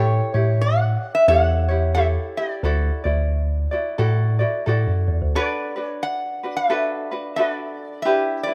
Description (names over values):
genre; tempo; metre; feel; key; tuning
Hawaiian; 89 BPM; 4/4; swing 60% on 8ths; D major; A4 = 440 Hz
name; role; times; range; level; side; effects
metal-body resonator slide guitar; melody; 0.0-8.5 s; C#5 to F#5; -24 LUFS; equal; none
ukulele; accompaniment; 0.0-8.5 s; D4 to D5; -28 LUFS; equal; none
bell-like tine electric piano; bass; 0.0-5.3 s; D2 to A2; -22 LUFS; equal; none
room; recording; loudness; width
light reverb, studio reverb; rough home demo mix; -21 LUFS; mono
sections
0.0-5.4 A section; 5.4-8.5 A section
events
none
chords
0.0 A7; 2.6 Dadd9; 5.4 D6